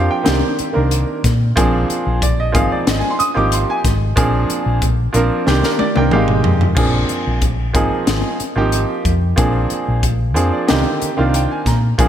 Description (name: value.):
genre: electric jazz fusion.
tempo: 92 BPM.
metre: 4/4.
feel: straight.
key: Bb mixolydian.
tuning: A4 = 440 Hz.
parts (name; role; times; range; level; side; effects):
clear grand piano; accompaniment; 0.0-12.1 s; D3 to Eb6; -18 LUFS; right 2 dB; none.
hollow-body short-scale fingered electric bass; bass; 0.0-12.1 s; Ab1 to Bb2; -17 LUFS; equal; none.
crisp fusion drum kit; drums; 0.3-12.1 s; crash cymbal, hi-hat, kick drum, snare drum, toms; -19 LUFS; left 1 dB; gated reverb.
room: moderate lush hall reverb, RT60 2.5 s.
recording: bright 1980s-style digital production.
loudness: -14 LUFS.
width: side -10 dB against mid.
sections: 0.0-6.8 A section; 6.8-12.1 B section.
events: drum fill 5.5-6.8; grand piano fill 10.0-12.0.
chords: 0.3 Cm9; 1.6 Bb9; 2.5 Ab6; 4.2 Bb9; 5.5 Cm9; 6.1 Abmaj7; 6.8 Bb9; 7.8 Ab6; 9.4 Bb9; 10.7 Cm9.